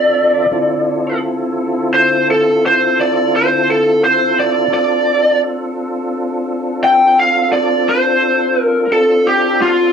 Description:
blues; 57 BPM (dotted quarters); 12/8; straight; D minor; A4 = 440 Hz
lead guitar through a small cranked amp; melody; 0.0-9.9 s; F4 to G5; -12 LUFS; equal; overdrive
tonewheel organ; sustained chords; 0.0-9.9 s; D3 to E5; -18 LUFS; left 1 dB; chorus vibrato, slow rotary speaker
wet studio reverb, RT60 0.6 s; band playing live in one room; -12 LUFS; side -7 dB against mid
0.0-9.9 A section
lead electric guitar solo 0.0-9.9
0.0 Dm9

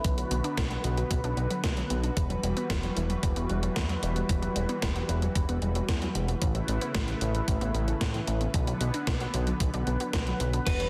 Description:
synthwave; 113 BPM; 4/4; straight; E dorian; A4 = 441 Hz
warm analog pad; sustained chords; 0.0-10.9 s; C#3 to F#5; -36 LUFS; equal; chorus, vintage 12-bit sampler grit, sidechain pumping
analog pluck; arpeggios; 0.0-10.9 s; C#3 to D4; -39 LUFS; equal; chorus, delay
fat analog bass; bass; 0.0-10.9 s; E1 to A2; -32 LUFS; equal; sidechain pumping
electronic kick drum; drums; 0.0-10.8 s; -33 LUFS; equal
gated 80s digital drum machine; drums; 0.0-10.9 s; crash cymbal, hi-hat, snare drum; -37 LUFS; equal; gated reverb, gated reverb snare
lightly driven lead guitar; melody; 10.7-10.9 s; B4; -32 LUFS; equal
moderate digital room reverb, RT60 1.2 s, digital ambience; dense, heavily limited modern master; -29 LUFS; mono
0.0-10.9 A section
0.0 Bm; 2.2 Emadd9; 6.4 Aadd9; 8.5 Bm

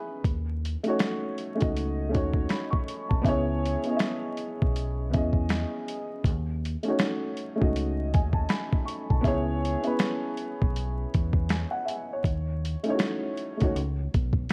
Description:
lo-fi hip hop; 80 BPM; 4/4; swing 61% on 16ths; A4 = 440 Hz
dark upright piano; accompaniment; 0.0-13.8 s; A3 to C#6; -32 LUFS; equal; cassette tape, low-pass filter
deep dub fingered electric bass; bass; 0.2-14.5 s; B1 to E2; -32 LUFS; equal
boom bap sampler-style drum kit; drums; 0.2-14.5 s; hi-hat, kick drum, snare drum; -29 LUFS; equal
light reverb, digital ambience; dark, warm production, vinyl crackle; -28 LUFS; mono
0.0-14.5 A section
0.2 D#m7b5; 3.2 C#m7; 6.2 D#m7b5; 9.2 C#m7; 12.2 D#m7b5; 13.7 Bsus2

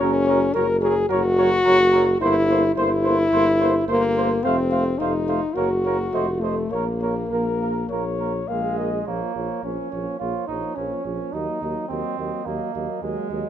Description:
classical, brass quintet; 106 BPM; 4/4; straight; Bb minor; A4 = 440 Hz
dark trumpet; melody; 0.0-13.5 s; Bb4 to F5; -29 LUFS; left 8 dB
mellow flugelhorn; second line; 0.0-13.5 s; Ab3 to C5; -29 LUFS; right 9 dB
mellow French horn; accompaniment; 0.0-13.5 s; A3 to Bb4; -22 LUFS; left 2 dB
mellow trombone; accompaniment; 0.0-13.5 s; F3 to Bb3; -31 LUFS; right 5 dB
mellow bass trombone; bass; 0.0-13.4 s; F1 to Eb2; -26 LUFS; right 2 dB
light reverb; close, detailed microphones; -19 LUFS; side -10 dB against mid
0.0-9.1 A section; 9.1-13.5 A section
0.0 Gb; 2.2 C7/G; 4.4 F; 5.6 Gb; 6.1 F7; 6.7 Bbm; 11.3 Ebm

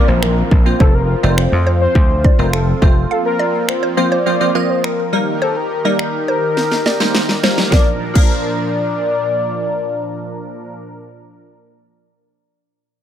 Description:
dance-pop; 104 BPM; 4/4; straight; Bb major; A4 = 440 Hz
mallet-like synth pluck; melody; 0.0-9.4 s; Bb4 to F5; -24 LUFS; right 3 dB; chorus, sidechain pumping, digital delay
warm velvety synth lead; melody; 0.0-10.8 s; A4 to D5; -20 LUFS; left 3 dB; chorus
wavetable chord stab; accompaniment; 0.0-11.5 s; F3 to Eb5; -20 LUFS; equal; sidechain pumping
warm analog pad; sustained chords; 0.0-10.8 s; Bb2 to Bb4; -23 LUFS; right 1 dB; chorus, sidechain pumping
downlifter; sound effects; 0.0-3.1 s; -30 LUFS; right 1 dB
dry thumbed slap bass; bass; 0.1-3.0 s; F1 to F2; -16 LUFS; equal; sidechain pumping
house drum kit; drums; 0.2-8.3 s; crash cymbal, finger snaps, kick drum, snare drum; -14 LUFS; equal
little or no reverb; -13 LUFS; side -10 dB against mid
0.0-7.7 A section; 7.7-10.0 B section
drum fill 6.6-7.7
0.0 Bbsus2; 0.8 F; 3.1 Bbsus2/F; 5.1 Eb; 7.7 Bb

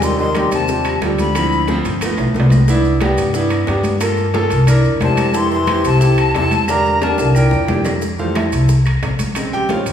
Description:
Afro-Cuban jazz; 180 BPM; 4/4; straight; A4 = 438 Hz
breathy jazz flute; melody; 0.0-1.8, 5.0-7.9 s; G5 to C6; -20 LUFS; left 2 dB
clear trombone; second line; 0.0-1.8, 5.0-7.9 s; Bb2 to E3; -22 LUFS; left 2 dB
clear concert grand piano; accompaniment; 0.0-9.9 s; Db3 to G5; -19 LUFS; right 1 dB
upright bass; bass; 0.0-9.9 s; G1 to G2; -17 LUFS; equal
bongos; percussion; 0.0-9.9 s; -30 LUFS; left 6 dB
congas; percussion; 0.0-9.9 s; -25 LUFS; equal
maracas; percussion; 0.0-9.9 s; -33 LUFS; right 3 dB
timbales; percussion; 0.3-9.9 s; -27 LUFS; right 2 dB
claves; percussion; 0.4-9.5 s; -32 LUFS; left 2 dB
wet recital hall reverb, RT60 1.6 s; recorded in a church or concert hall, small room ambience; -13 LUFS; side -9 dB against mid
0.0-8.0 A section; 8.0-9.9 B section
drum fill 2.2-2.7, 6.7-8.0; grand piano solo 8.0-9.9
0.0 Eb69; 1.4 Dm7; 2.0 G7; 2.7 Cmaj7; 4.0 Gm7; 4.7 C9; 5.4 Fmaj9; 6.7 Em7b5; 7.4 C9; 8.0 Fmaj9; 9.4 Bbm9

